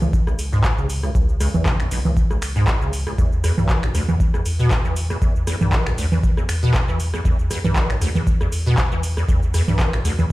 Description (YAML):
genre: acid house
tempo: 118 BPM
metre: 4/4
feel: swing 54% on 16ths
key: unclear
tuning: A4 = 439 Hz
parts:
  - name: deep acid bass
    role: riff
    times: 0.0-10.3 s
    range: B1 to E3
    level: -22 LUFS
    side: equal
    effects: ensemble chorus, sidechain pumping
  - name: warm sub bass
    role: bass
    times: 0.0-10.3 s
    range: G#1 to E2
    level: -24 LUFS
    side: equal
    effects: sidechain pumping
  - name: booming analog drum machine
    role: drums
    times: 0.0-10.3 s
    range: congas, finger snaps, handclaps, hi-hat, rim click, shaker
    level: -24 LUFS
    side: right 1 dB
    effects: overdrive
  - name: electronic kick drum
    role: drums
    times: 0.1-9.9 s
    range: none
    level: -20 LUFS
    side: equal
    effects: overdrive
room: light reverb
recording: played on a big sound system in a bare room, large studio reverb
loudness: -17 LUFS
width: side -18 dB against mid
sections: 0.0-10.3 A section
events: none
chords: 0.0 C#5; 3.2 E5